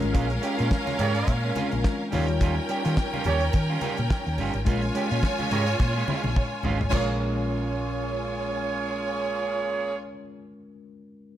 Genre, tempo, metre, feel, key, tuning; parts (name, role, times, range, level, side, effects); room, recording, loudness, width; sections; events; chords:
disco; 106 BPM; 4/4; swing 56% on 16ths; Bb dorian; A4 = 444 Hz
clear studio string section; second line; 0.0-9.9 s; Db4 to Ab5; -30 LUFS; equal
electric guitar at the edge of break-up; accompaniment; 0.0-10.5 s; G3 to G4; -33 LUFS; right 6 dB
tine electric piano; accompaniment; 0.0-11.4 s; G3 to Db5; -34 LUFS; left 5 dB; auto-pan
hollow-body short-scale fingered electric bass; bass; 0.0-10.1 s; G1 to Eb3; -27 LUFS; equal
damped 70s drum kit; drums; 0.0-7.1 s; crash cymbal, hi-hat, kick drum, snare drum, toms; -27 LUFS; equal
congas; percussion; 0.2-7.2 s; -37 LUFS; left 4 dB
warm horn section; stabs; 1.0-9.9 s; Bb3 to Db5; -30 LUFS; right 5 dB
studio reverb; -23 LUFS; side -12 dB against mid
0.0-6.9 A section; 6.9-9.2 B section
drum fill 5.8-6.9
0.0 Bbm7; 2.1 Eb9; 4.7 Bbm7